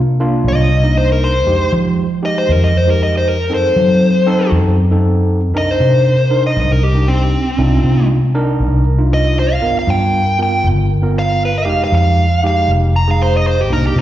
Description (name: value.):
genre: straight-eighth soul blues.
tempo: 118 BPM.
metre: 4/4.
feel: straight.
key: C minor.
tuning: A4 = 438 Hz.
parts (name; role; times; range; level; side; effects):
vintage muted fingered electric bass; bass; 0.0-14.0 s; F1 to F#3; -14 LUFS; equal; none.
overdriven tine electric piano; accompaniment; 0.2-14.0 s; Ab3 to Bb4; -20 LUFS; right 1 dB; slapback echo.
dark smooth lead guitar; melody; 0.5-14.0 s; C4 to Bb5; -16 LUFS; equal; overdrive, slapback echo.
room: light reverb.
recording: live gig heard through the venue's PA, recital hall reverb.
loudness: -11 LUFS.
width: side -12 dB against mid.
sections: 0.0-14.0 A section.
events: lead electric guitar solo 0.0-14.0.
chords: 0.0 Cm7; 1.5 Fm7; 3.5 F#dim7; 5.5 Cm7; 9.6 G7#9; 11.7 Fm7.